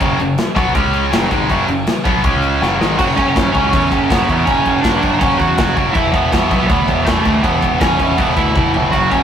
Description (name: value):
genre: heavy metal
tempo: 161 BPM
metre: 4/4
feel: straight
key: unclear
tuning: A4 = 438 Hz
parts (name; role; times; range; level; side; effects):
- tight distorted guitar; riff; 0.0-9.2 s; E2 to C#4; -16 LUFS; equal; distortion
- growling picked electric bass; bass; 0.0-9.2 s; E1 to E2; -20 LUFS; equal; overdrive
- big rock drum kit; drums; 0.0-9.2 s; crash cymbal, kick drum, snare drum, toms; -18 LUFS; equal; none
- high-gain lead guitar; melody; 3.0-9.2 s; A3 to F#4; -17 LUFS; right 2 dB; distortion
room: light reverb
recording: rough rehearsal-room recording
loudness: -12 LUFS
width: side -8 dB against mid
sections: 0.0-3.0 A section; 3.0-9.2 B section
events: drum fill 2.6-3.0, 8.6-8.9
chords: 0.0 F#5; 0.7 C#5; 1.1 F#5; 2.2 C#5; 2.6 F#5; 6.0 E5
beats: | 0.00 0.38 0.75 1.12 | 1.49 1.87 2.24 2.61 | 2.98 3.35 3.73 4.10 | 4.47 4.84 5.22 5.59 | 5.96 6.33 6.70 7.07 | 7.45 7.82 8.19 8.56 | 8.93